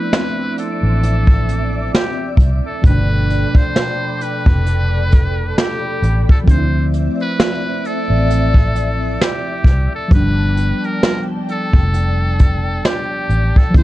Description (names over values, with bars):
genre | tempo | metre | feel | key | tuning
lo-fi hip hop | 66 BPM | 4/4 | swing 57% on 16ths | unclear | A4 = 439 Hz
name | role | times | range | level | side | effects
trumpet with metal mute | melody | 0.0-13.8 s | G4 to C5 | -24 LUFS | equal | low-pass filter
muted felt-like synth keys | accompaniment | 0.0-13.8 s | B2 to E4 | -23 LUFS | equal | chorus, low-pass filter
ensemble organ-string | sustained chords | 0.0-13.8 s | C4 to D6 | -26 LUFS | left 1 dB | phaser, ensemble chorus, low-pass filter
vintage brush drum kit | drums | 0.1-13.8 s | hi-hat, kick drum, snare drum | -13 LUFS | equal | vintage 12-bit sampler grit
vintage muted fingered electric bass | bass | 0.8-13.8 s | F1 to D2 | -16 LUFS | equal | none
room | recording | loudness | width
light reverb | dark, warm production | -13 LUFS | side -16 dB against mid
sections
0.0-13.8 A section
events
none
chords
0.0 Dm9; 2.8 G9; 6.5 Dm9; 10.1 G9